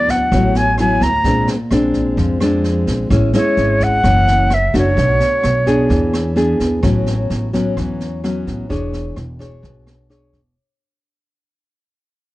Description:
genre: bossa nova.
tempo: 129 BPM.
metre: 4/4.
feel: straight.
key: A major.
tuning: A4 = 440 Hz.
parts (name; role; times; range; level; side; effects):
silver concert flute; melody; 0.0-6.3 s; C#5 to Bb5; -16 LUFS; equal; none.
nylon-string guitar; accompaniment; 0.0-10.5 s; F#2 to C#5; -18 LUFS; left 1 dB; none.
upright bass; bass; 0.0-10.5 s; E1 to F2; -19 LUFS; equal; none.
jazz brush drum kit; drums; 0.1-10.4 s; kick drum, rim click, snare drum; -24 LUFS; equal; none.
room: little or no reverb.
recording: worn, warbling old tape, cassette tape, warbly pitch drift.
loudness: -13 LUFS.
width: side -17 dB against mid.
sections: 0.0-6.8 A section; 6.8-10.6 B section.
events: fade-out 6.8-10.6.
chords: 0.0 D69; 1.2 Bb9; 3.1 Amaj7; 4.0 F#7; 5.0 Bm7; 5.9 E7; 6.8 A69; 8.7 E6.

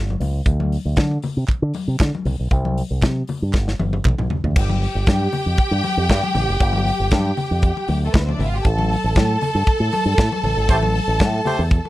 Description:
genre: disco.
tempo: 117 BPM.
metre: 4/4.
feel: straight.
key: A minor.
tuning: A4 = 441 Hz.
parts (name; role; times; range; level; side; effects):
fingered electric bass with an envelope filter; bass; 0.0-11.8 s; F#1 to D3; -20 LUFS; equal; none.
congas; percussion; 0.1-11.9 s; none; -27 LUFS; left 4 dB; none.
modern studio drum kit; drums; 0.2-11.8 s; crash cymbal, hi-hat, kick drum, snare drum, toms; -19 LUFS; equal; none.
group handclap; percussion; 1.0-4.2 s; none; -33 LUFS; right 8 dB; none.
clear studio string section; second line; 4.6-11.9 s; A3 to A5; -22 LUFS; equal; none.
warm horn section; stabs; 10.7-11.6 s; A3 to C5; -22 LUFS; right 1 dB; none.
room: little or no reverb.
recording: dry, close 1970s-style studio recording.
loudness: -17 LUFS.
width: side -16 dB against mid.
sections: 0.0-4.6 A section; 4.6-11.9 B section.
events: drum fill 3.5-4.6; band accent 10.7-11.9.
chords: 0.5 N.C.; 2.3 C5; 3.5 G; 4.6 N.C.; 8.6 A7(no3).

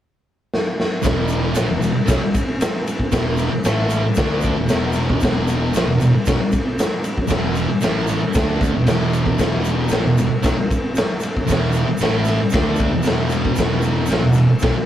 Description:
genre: garage rock duo or trio.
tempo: 115 BPM.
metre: 4/4.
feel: straight.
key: unclear.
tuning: A4 = 440 Hz.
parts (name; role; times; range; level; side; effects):
raw garage drum kit; drums; 0.5-14.7 s; kick drum, ride cymbal, snare drum; -19 LUFS; equal; none.
thick fuzz guitar; riff; 1.0-14.8 s; E2 to D4; -19 LUFS; equal; distortion.
fuzz picked electric bass; bass; 1.0-14.8 s; E1 to D2; -23 LUFS; equal; overdrive.
egg shaker; percussion; 1.0-14.7 s; none; -37 LUFS; right 4 dB; none.
room: light reverb.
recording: rough rehearsal-room recording.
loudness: -16 LUFS.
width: side -11 dB against mid.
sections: 0.0-1.0 A section; 1.0-14.9 B section.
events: drum fill 0.5-1.0.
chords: 0.0 N.C.; 1.0 E5.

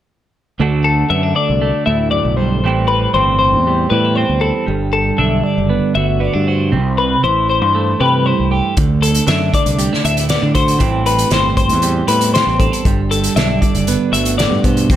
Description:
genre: math rock and midwest emo.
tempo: 118 BPM.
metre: 4/4.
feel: straight.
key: G major.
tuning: A4 = 440 Hz.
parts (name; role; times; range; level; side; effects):
twelve-string electric guitar; accompaniment; 0.6-15.0 s; D2 to G4; -18 LUFS; right 6 dB; spring reverb.
growling fingered electric bass; bass; 0.6-15.0 s; F#1 to D3; -18 LUFS; equal; overdrive.
twelve-string electric guitar; arpeggios; 0.8-15.0 s; A4 to E5; -17 LUFS; left 5 dB; spring reverb.
loose indie drum kit; drums; 8.8-15.0 s; hi-hat, kick drum, snare drum; -17 LUFS; equal; none.
room: light reverb.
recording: none.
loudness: -12 LUFS.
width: side -11 dB against mid.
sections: 0.6-15.0 A section.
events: none.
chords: 0.6 D; 2.6 Am7; 4.7 Gmaj7; 6.7 C6; 8.8 D; 10.8 Am7; 12.9 Gmaj7.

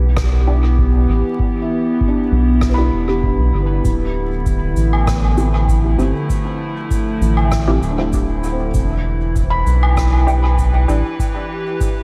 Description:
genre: ambient dub.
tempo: 98 BPM.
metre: 4/4.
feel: straight.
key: unclear.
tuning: A4 = 440 Hz.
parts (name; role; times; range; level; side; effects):
warbly tape-like pad; sustained chords; 0.0-12.0 s; D3 to B4; -24 LUFS; equal; chorus, built-in reverb, phaser.
round analog bass; bass; 0.0-11.0 s; D1 to B1; -18 LUFS; equal; none.
electronic kick drum; drums; 0.2-11.9 s; none; -23 LUFS; equal; studio ambience.
rim click, cabasa and woodblock; drums; 0.2-11.9 s; none; -29 LUFS; equal; studio ambience, dub echo.
filtered dub chord stab; stabs; 0.5-11.0 s; C4 to G4; -28 LUFS; equal; phaser, lush chorus, dub echo.
felt-muted upright piano; arpeggios; 1.6-12.0 s; B3 to B5; -30 LUFS; equal; tape echo.
room: studio ambience.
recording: vinyl crackle.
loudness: -17 LUFS.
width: mono.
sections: 0.0-12.0 A section.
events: none.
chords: 0.0 Em7; 3.8 Dm11; 8.7 Em7.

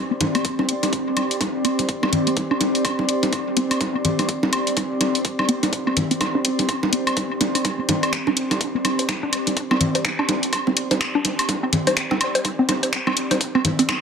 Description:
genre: minimal techno.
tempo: 125 BPM.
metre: 4/4.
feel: swing 60% on 16ths.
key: unclear.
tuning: A4 = 440 Hz.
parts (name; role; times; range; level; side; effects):
warbly tape-like pad; texture; 0.0-14.0 s; C4 to C6; -25 LUFS; equal; chorus, built-in reverb, sidechain pumping.
hollow square pluck; riff; 0.1-13.8 s; C4 to C5; -24 LUFS; equal; chorus, phaser, sidechain pumping, dub echo.
house drum kit; drums; 0.2-14.0 s; finger snaps, hi-hat; -24 LUFS; left 1 dB; high-pass filter on hats, studio reverb, high-pass filter on snare.
bongos, congas and woodblock; percussion; 0.2-14.0 s; none; -24 LUFS; right 1 dB; studio reverb, dub echo.
electronic kick drum; drums; 0.4-14.0 s; none; -30 LUFS; equal; high-pass filter on kick, studio reverb.
room: wet spring reverb, RT60 1.4 s.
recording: echo-heavy mix.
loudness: -19 LUFS.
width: side -6 dB against mid.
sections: 0.0-14.0 A section.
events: build-up 0.0-14.0; filter sweep on synth arpeggio sound 0.0-14.0.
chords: 0.0 C5.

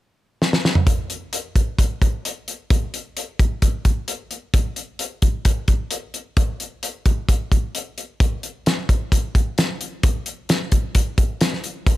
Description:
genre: rock.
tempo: 131 BPM.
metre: 4/4.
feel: straight.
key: none.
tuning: none.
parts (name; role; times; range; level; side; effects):
loose indie drum kit; drums; 0.4-12.0 s; hi-hat, kick drum, snare drum, toms; -18 LUFS; equal; none.
room: little or no reverb.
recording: none.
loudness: -19 LUFS.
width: side -16 dB against mid.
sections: 0.9-12.0 A section.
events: drum fill 0.4-0.9.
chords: none.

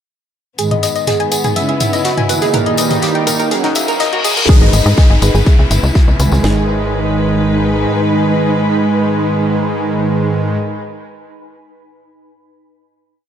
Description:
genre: melodic techno.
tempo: 123 BPM.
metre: 4/4.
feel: straight.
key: G# minor.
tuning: A4 = 441 Hz.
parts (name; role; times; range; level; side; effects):
warm studio string section; sustained chords; 0.6-10.6 s; D#2 to B4; -22 LUFS; left 2 dB; sidechain pumping, low-pass filter.
soft round pluck; arpeggios; 0.6-6.7 s; D#4 to G#5; -18 LUFS; right 1 dB; chorus, sidechain pumping, tape echo.
brassy analog pad; stabs; 0.6-10.6 s; G#2 to F#4; -17 LUFS; right 3 dB; chorus, sidechain pumping, tape echo.
house drum kit; drums; 0.6-6.3 s; hi-hat, toms; -20 LUFS; left 1 dB; sidechain pumping on hats, sidechain pumping on toms.
warm soul drum kit; drums; 0.6-6.4 s; hi-hat, snare drum; -28 LUFS; left 4 dB; none.
tambourine; percussion; 0.6-6.4 s; none; -24 LUFS; left 3 dB; tape echo.
riser, reverse cymbal and downlifter; sound effects; 3.7-8.4 s; none; -23 LUFS; left 2 dB; none.
granular cloud pad; texture; 1.3-10.8 s; C#4 to B5; -23 LUFS; left 1 dB; built-in reverb, sidechain pumping.
analog drone; drone; 5.7-10.6 s; G#2; -25 LUFS; left 1 dB; chorus, sidechain pumping.
house drum kit; drums; 4.5-6.6 s; kick drum, snare drum; -9 LUFS; equal; none.
tight sequencer bass; bass; 4.6-7.9 s; G#1 to G#2; -15 LUFS; equal; sidechain pumping.
room: moderate plate reverb, RT60 1.9 s, digital ambience.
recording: echo-heavy mix, high-pass filter.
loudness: -11 LUFS.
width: side -9 dB against mid.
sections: 0.6-4.5 build; 4.5-6.4 outro; 6.4-10.3 final chord.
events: build-up 0.6-4.5; filter sweep on analog synth pad 0.6-4.5; filter sweep 0.6-4.5; riser 3.7-4.5; reverse cymbal 3.7-4.5; filter sweep on synth arpeggio sound 4.5-6.4; filter sweep on string section 4.5-6.4.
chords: 0.6 G#m; 1.6 C#m7; 2.5 D#; 3.5 F#; 4.5 G#m; 5.5 C#m7; 6.4 G#m.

